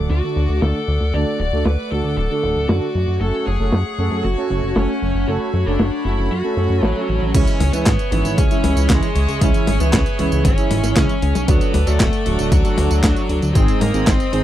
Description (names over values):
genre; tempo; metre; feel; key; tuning
italo disco; 116 BPM; 4/4; straight; unclear; A4 = 440 Hz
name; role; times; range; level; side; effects
rich chamber string section; sustained chords; 0.0-14.4 s; A3 to D#6; -29 LUFS; left 2 dB; none
analog synth brass; stabs; 0.0-14.4 s; G#2 to A4; -24 LUFS; right 3 dB; chorus
chorused synth bass; bass; 0.0-14.4 s; D1 to G#2; -19 LUFS; equal; none
dark smooth lead guitar; melody; 0.1-14.4 s; F#3 to D5; -24 LUFS; left 1 dB; overdrive, tape echo
clean 12-bit digital drum machine; drums; 0.1-14.4 s; crash cymbal, handclaps, hi-hat, snare drum, tambourine, toms; -22 LUFS; left 1 dB; low-pass filter on hats, low-pass filter on snare, low-pass filter on perc, low-pass filter on cymbals, low-pass filter on toms
swell; sound effects; 6.5-7.3 s; none; -28 LUFS; left 1 dB; none
electronic kick drum; drums; 7.3-14.2 s; none; -18 LUFS; equal; none
room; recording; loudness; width
little or no reverb; dry, close 1970s-style studio recording; -15 LUFS; side -12 dB against mid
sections
0.0-7.3 A section; 7.3-14.4 B section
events
filter sweep on analog polysynth 0.0-7.3; swell 6.5-7.3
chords
0.0 D; 3.2 F#m; 7.3 C#m; 11.5 D; 13.6 G#